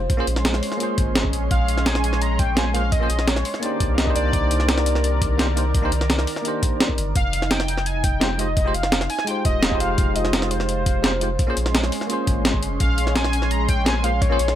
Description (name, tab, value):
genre	liquid drum and bass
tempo	170 BPM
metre	4/4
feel	straight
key	F minor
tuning	A4 = 443 Hz
part	warm velvety synth lead	melody	0.0-14.6 s	C5 to Bb5	-27 LUFS	equal	chorus, cassette tape, dub echo
part	lush unison pad	sustained chords	0.0-14.6 s	Eb3 to C6	-28 LUFS	equal	chorus
part	warm sub bass	bass	0.0-14.6 s	Eb1 to C2	-24 LUFS	equal	none
part	breakbeat sampler-style drum kit	drums	0.1-14.6 s	hi-hat, snare drum	-23 LUFS	equal	none
part	electronic kick drum	drums	0.1-14.3 s	none	-22 LUFS	equal	none
part	barky tine electric piano	accompaniment	0.2-14.4 s	Ab3 to C5	-27 LUFS	equal	wide subtle chorus, digital delay
room	digital ambience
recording	none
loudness	-18 LUFS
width	side -11 dB against mid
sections	0.0-14.6 A section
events	none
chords	0.1 Bbm9; 3.6 Cm9; 7.2 Fm9; 11.4 Bbm9